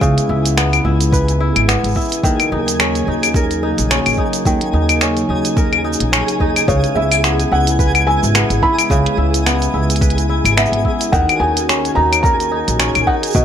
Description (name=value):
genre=folktronica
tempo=108 BPM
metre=4/4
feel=swing 56% on 16ths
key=unclear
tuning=A4 = 440 Hz
part: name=warm analog pad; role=sustained chords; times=0.0-13.4 s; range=C#3 to A#4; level=-22 LUFS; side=left 1 dB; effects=chorus
part: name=kora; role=arpeggios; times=0.0-13.4 s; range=B2 to B4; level=-21 LUFS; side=equal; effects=ping-pong delay
part: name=upright bass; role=bass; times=0.0-13.4 s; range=G#1 to D#2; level=-18 LUFS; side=equal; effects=none
part: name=electronic kick drum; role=drums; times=0.0-13.4 s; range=none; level=-18 LUFS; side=equal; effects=overdrive
part: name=minimal click drum kit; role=drums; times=0.0-13.4 s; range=claves, finger snaps, hi-hat, shaker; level=-17 LUFS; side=left 2 dB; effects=none
part: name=twinkling granular texture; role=texture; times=0.0-13.4 s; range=G#4 to G#5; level=-25 LUFS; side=right 1 dB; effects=built-in reverb
part: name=felt-muted upright piano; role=melody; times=6.7-13.4 s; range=C#5 to B5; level=-19 LUFS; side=equal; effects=vintage 12-bit sampler grit, ping-pong delay
room=light reverb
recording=none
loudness=-13 LUFS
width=side -9 dB against mid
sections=0.0-13.4 A section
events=none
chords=0.0 C#m7; 2.2 D#m7; 6.7 C#m7; 11.1 D#m7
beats=| 0.02 0.57 1.13 1.69 | 2.24 2.80 3.35 3.91 | 4.46 5.02 5.58 6.13 | 6.69 7.24 7.80 8.35 | 8.91 9.46 10.02 10.57 | 11.13 11.69 12.24 12.80 | 13.35